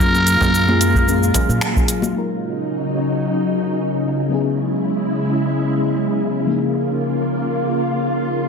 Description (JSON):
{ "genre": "sunset chillout", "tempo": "111 BPM", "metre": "4/4", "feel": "swing 54% on 16ths", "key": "Eb minor", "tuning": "A4 = 438 Hz", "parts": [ { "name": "trumpet with metal mute", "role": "melody", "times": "0.0-1.6 s", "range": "Bb4", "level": "-19 LUFS", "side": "right 1 dB", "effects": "tape echo" }, { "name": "mellow FM electric piano", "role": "accompaniment", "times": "0.0-8.5 s", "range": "F3 to Bb4", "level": "-24 LUFS", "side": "moving between left 7 dB and right 2 dB", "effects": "chorus, phaser, auto-pan, ping-pong delay" }, { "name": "soft string machine", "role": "sustained chords", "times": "0.0-8.5 s", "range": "Bb2 to F4", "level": "-20 LUFS", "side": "equal", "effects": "ensemble chorus" }, { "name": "mellow fretless electric bass", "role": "bass", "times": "0.0-1.6 s", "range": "Gb2 to Bb2", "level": "-18 LUFS", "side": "equal", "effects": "none" }, { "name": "deep house drum kit", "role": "drums", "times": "0.0-2.1 s", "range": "finger snaps, hi-hat, shaker", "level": "-23 LUFS", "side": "right 1 dB", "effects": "overdrive, soft clipping on snare" }, { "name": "congas", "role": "percussion", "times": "0.1-2.1 s", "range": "none", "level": "-27 LUFS", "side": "left 3 dB", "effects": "none" }, { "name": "electronic kick drum", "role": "drums", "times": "0.4-1.9 s", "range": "none", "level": "-20 LUFS", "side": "equal", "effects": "none" } ], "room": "moderate plate reverb, RT60 1.1 s, digital ambience", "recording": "dense, heavily limited modern master", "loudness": "-16 LUFS", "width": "side -5 dB against mid", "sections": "0.0-2.2 A section; 2.2-8.5 B section", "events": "filter sweep on FM electric piano 0.0-2.2; band accent 1.6", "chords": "0.0 Gbmaj9; 2.2 Ebm7; 4.3 E6; 6.5 Db6" }